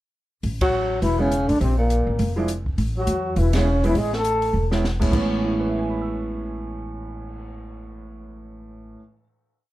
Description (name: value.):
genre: jazz, small-group swing and bop.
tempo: 204 BPM.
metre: 4/4.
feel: swing 60% on 8ths.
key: A major.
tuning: A4 = 442 Hz.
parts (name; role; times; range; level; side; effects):
upright bass; bass; 0.4-8.9 s; E1 to E2; -25 LUFS; equal; none.
open jazz drum kit; drums; 0.4-7.4 s; crash cymbal, cymbal swell, hi-hat, kick drum, ride cymbal, snare drum; -29 LUFS; equal; none.
breathy trombone; melody; 0.6-4.7 s; Bb3 to A4; -23 LUFS; left 2 dB; plate reverb.
breathy tenor saxophone; second line; 0.6-4.7 s; Bb2 to A3; -27 LUFS; right 2 dB; none.
warm baby grand piano; accompaniment; 1.2-9.2 s; A2 to E6; -26 LUFS; right 2 dB; none.
room: light reverb.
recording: dark, warm production.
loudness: -20 LUFS.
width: side -16 dB against mid.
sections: 0.4-5.1 A section; 5.1-7.5 final chord.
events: band accent 0.6, 3.5; drum fill 4.5.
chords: 0.4 A; 1.6 Bb5; 2.8 Amaj9.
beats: | 0.44 0.73 1.02 1.32 | 1.61 1.91 2.20 2.49 | 2.79 3.08 3.37 3.67 | 3.96 4.25 4.55 4.84 | 5.13 5.43 5.72 6.02 | 6.31 6.61 6.90 7.20.